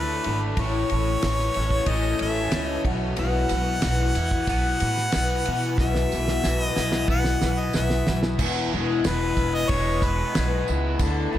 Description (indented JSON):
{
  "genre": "folk rock and heartland rock",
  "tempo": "92 BPM",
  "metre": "4/4",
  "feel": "straight",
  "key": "E major",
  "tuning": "A4 = 441 Hz",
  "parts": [
    { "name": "clear harmonica", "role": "melody", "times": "0.0-10.7 s", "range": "B4 to F#5", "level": "-28 LUFS", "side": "equal", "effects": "dub echo" },
    { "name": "picked twelve-string acoustic guitar", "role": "accompaniment", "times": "0.0-11.4 s", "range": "E2 to F#4", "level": "-28 LUFS", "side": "left 6 dB", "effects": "dub echo" },
    { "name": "mellow tonewheel organ", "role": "sustained chords", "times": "0.0-11.4 s", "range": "B3 to A5", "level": "-39 LUFS", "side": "right 3 dB", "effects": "none" },
    { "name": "raw garage guitar", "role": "riff", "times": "0.0-11.4 s", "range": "E2 to E4", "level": "-31 LUFS", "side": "right 1 dB", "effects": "overdrive, phaser, dub echo" },
    { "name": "upright bass", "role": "bass", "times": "0.0-11.4 s", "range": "E1 to B2", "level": "-26 LUFS", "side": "equal", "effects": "none" },
    { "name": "damped 70s drum kit", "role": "drums", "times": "0.2-11.2 s", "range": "crash cymbal, kick drum, ride cymbal, snare drum", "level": "-28 LUFS", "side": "right 1 dB", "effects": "none" },
    { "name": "tambourine", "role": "percussion", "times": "3.2-11.2 s", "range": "none", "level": "-43 LUFS", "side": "right 15 dB", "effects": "none" }
  ],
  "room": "studio reverb",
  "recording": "echo-heavy mix",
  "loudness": "-21 LUFS",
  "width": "side -12 dB against mid",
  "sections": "0.0-8.4 A section; 8.4-11.4 B section",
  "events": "drum fill 5.8-8.4",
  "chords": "0.0 Dsus2; 0.6 A; 2.9 Bsus4; 8.4 E"
}